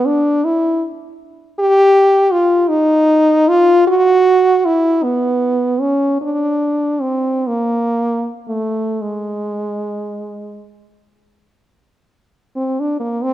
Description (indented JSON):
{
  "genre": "classical, free, expressive piece for unaccompanied French horn",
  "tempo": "24-56 BPM (dotted quarters)",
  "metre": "6/8",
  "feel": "rubato",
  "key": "unclear",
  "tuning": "A4 = 440 Hz",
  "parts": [
    { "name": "clear French horn", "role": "solo", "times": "0.0-13.3 s", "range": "Ab3 to G4", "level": "-13 LUFS", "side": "equal", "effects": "none" }
  ],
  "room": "moderate recital hall reverb, RT60 1.8 s",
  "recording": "none",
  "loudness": "-13 LUFS",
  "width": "side -13 dB against mid",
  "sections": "0.0-12.6 A section",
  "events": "none",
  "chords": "none"
}